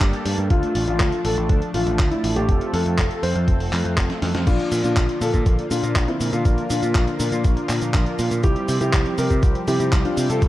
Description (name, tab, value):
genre	italo disco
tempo	121 BPM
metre	4/4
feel	straight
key	unclear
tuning	A4 = 440 Hz
part	dark grand piano	melody	0.0-10.5 s	C4 to C5	-25 LUFS	left 1 dB	digital delay
part	warm analog pad	sustained chords	0.0-10.5 s	D3 to A5	-29 LUFS	left 1 dB	chorus
part	mellow synth brass	stabs	0.0-10.5 s	F3 to D5	-30 LUFS	right 2 dB	chorus, cassette tape, digital delay
part	growling picked electric bass	bass	0.0-10.5 s	F1 to C3	-24 LUFS	equal	overdrive, tube saturation
part	dusty soul sampler-style drum kit	drums	0.0-10.5 s	cabasa, crash cymbal, handclaps, hi-hat, snare drum	-28 LUFS	equal	none
part	electronic kick drum	drums	0.0-10.5 s	none	-19 LUFS	equal	none
room	light reverb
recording	dark, warm production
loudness	-18 LUFS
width	side -15 dB against mid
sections	0.0-4.5 A section; 4.5-10.5 B section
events	drum fill 4.1-4.5; band accent 4.3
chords	0.0 Gmadd9; 0.5 Dm; 2.5 F; 4.5 Bb; 8.4 Csus4